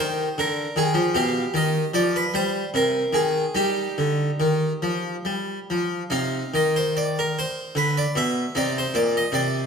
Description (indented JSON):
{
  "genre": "classical, baroque-style suite movement for harpsichord",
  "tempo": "69-78 BPM",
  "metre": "3/4",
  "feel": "rubato",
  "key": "C minor",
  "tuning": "A4 = 440 Hz",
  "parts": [
    { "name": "harpsichord", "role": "solo", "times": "0.0-9.7 s", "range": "Bb2 to F5", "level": "-21 LUFS", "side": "equal", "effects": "none" }
  ],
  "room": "wet recital hall reverb, RT60 1.4 s",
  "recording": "none",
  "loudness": "-21 LUFS",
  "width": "side -6 dB against mid",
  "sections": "0.0-9.7 A section",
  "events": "none",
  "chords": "0.4 Ddim; 1.2 G7/B; 2.7 Cm; 3.6 Ebmaj9/D; 5.3 Fsus2; 6.1 Cm; 7.8 Bmadd11; 8.5 Cm",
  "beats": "0.38 | 1.16 1.94 2.74 | 3.56 4.41 5.27 | 6.13 6.96 7.76 | 8.54 9.33"
}